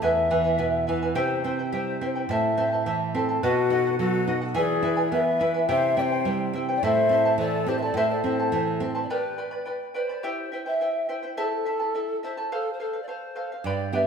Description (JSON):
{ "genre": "andean folk, Andean ensemble", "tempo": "106 BPM", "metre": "2/4", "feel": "straight", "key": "unclear", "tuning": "A4 = 440 Hz", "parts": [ { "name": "mellow polished pan flute", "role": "melody", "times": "0.0-14.1 s", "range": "A4 to G5", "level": "-27 LUFS", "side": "left 1 dB", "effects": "none" }, { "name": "charango", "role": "accompaniment", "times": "0.0-14.1 s", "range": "E4 to B5", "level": "-28 LUFS", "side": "right 1 dB", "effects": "none" }, { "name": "nylon-string guitar", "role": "accompaniment", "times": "0.0-9.1, 13.6-14.1 s", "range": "E2 to G4", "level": "-28 LUFS", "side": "right 4 dB", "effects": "none" }, { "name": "breathy large quena", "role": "second line", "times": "3.4-8.8 s", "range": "F#4 to D5", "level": "-28 LUFS", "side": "left 8 dB", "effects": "none" } ], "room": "wet recital hall reverb, RT60 1.9 s", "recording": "minimal, uncompressed stereo recording", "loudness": "-23 LUFS", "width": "side -6 dB against mid", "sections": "0.0-9.1 A section; 9.1-14.1 B section", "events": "none", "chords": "0.0 E; 1.2 C; 2.3 Am; 3.4 B7; 4.6 E; 5.7 C; 6.8 Am; 9.1 G; 10.2 C; 11.4 Am; 12.5 F", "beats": "| 0.02 0.59 | 1.16 1.72 | 2.29 2.86 | 3.42 3.99 | 4.56 5.12 | 5.69 6.26 | 6.83 7.40 | 7.96 8.53 | 9.10 9.67 | 10.24 10.81 | 11.38 11.94 | 12.51 13.08 | 13.65" }